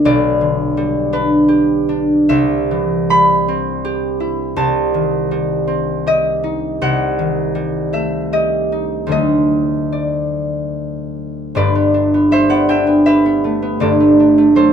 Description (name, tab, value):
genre	classical, solo harp piece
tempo	72-84 BPM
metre	3/4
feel	rubato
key	G major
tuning	A4 = 445 Hz
part	concert harp	solo	0.0-14.7 s	G1 to B5	-13 LUFS	equal	none
room	light reverb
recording	minimal, uncompressed stereo recording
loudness	-13 LUFS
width	side -8 dB against mid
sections	0.0-11.6 A section; 11.6-14.7 B section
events	none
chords	0.1 G/B; 2.3 C; 4.6 Cm; 6.8 Am7b5/C; 9.1 D; 11.6 G; 13.8 D7/G